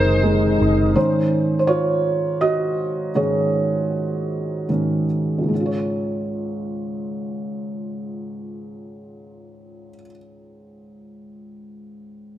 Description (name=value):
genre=six-eight pop ballad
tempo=47-56 BPM (dotted quarters)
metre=6/8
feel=straight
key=Db major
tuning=A4 = 444 Hz
part: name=felt-muted upright piano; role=accompaniment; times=0.0-12.4 s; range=Db2 to Eb5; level=-20 LUFS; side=right 1 dB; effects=none
part: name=percussive tonewheel organ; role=sustained chords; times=0.0-0.9 s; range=C3 to Eb4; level=-24 LUFS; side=left 1 dB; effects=overdrive, chorus vibrato, slow rotary speaker
part: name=vintage muted fingered electric bass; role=bass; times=0.0-0.9 s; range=Gb1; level=-20 LUFS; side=equal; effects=none
room=wet echo chamber reverb, RT60 1.7 s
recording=none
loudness=-19 LUFS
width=side -12 dB against mid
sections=1.0-5.5 A section; 5.5-10.6 B section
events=slowing down 1.0-5.5; felt piano solo 1.0-5.5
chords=0.0 Ab; 1.0 Absus4; 5.5 Db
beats=| 0.96 2.04 | 3.15 4.29 | 5.51 6.78 | 8.04 9.31